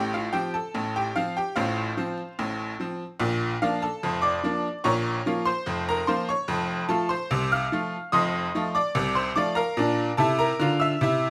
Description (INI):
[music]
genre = ragtime piano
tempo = 73 BPM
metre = 2/4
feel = straight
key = F major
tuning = A4 = 439 Hz
[part]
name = tack piano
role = solo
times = 0.0-11.3 s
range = F1 to F6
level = -26 LUFS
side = equal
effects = none
[sound]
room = moderate studio reverb, RT60 0.8 s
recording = vinyl crackle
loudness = -26 LUFS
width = mono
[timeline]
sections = 0.0-11.3 A section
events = none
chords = 0.0 F/A; 3.2 Bb; 4.8 Bbm; 6.5 F; 8.1 F7; 9.8 Bb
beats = 0.75 | 1.57 2.39 | 3.21 4.03 | 4.85 5.66 | 6.48 7.30 | 8.12 8.94 | 9.76 10.59